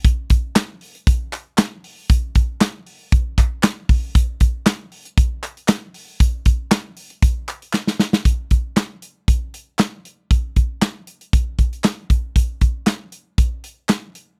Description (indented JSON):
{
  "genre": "funk",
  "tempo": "117 BPM",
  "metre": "4/4",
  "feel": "straight",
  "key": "none",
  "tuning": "none",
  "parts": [
    { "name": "modern studio drum kit", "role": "drums", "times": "0.0-14.3 s", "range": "handclaps, hi-hat, kick drum, snare drum", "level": "-18 LUFS", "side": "equal", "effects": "none" },
    { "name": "group handclap", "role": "percussion", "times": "0.6-14.0 s", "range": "none", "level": "-30 LUFS", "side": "equal", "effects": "none" }
  ],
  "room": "little or no reverb",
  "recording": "dry, close 1970s-style studio recording",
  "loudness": "-20 LUFS",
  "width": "mono",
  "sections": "0.0-8.3 A section; 8.3-14.4 B section",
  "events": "drum fill 7.7-8.3",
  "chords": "none"
}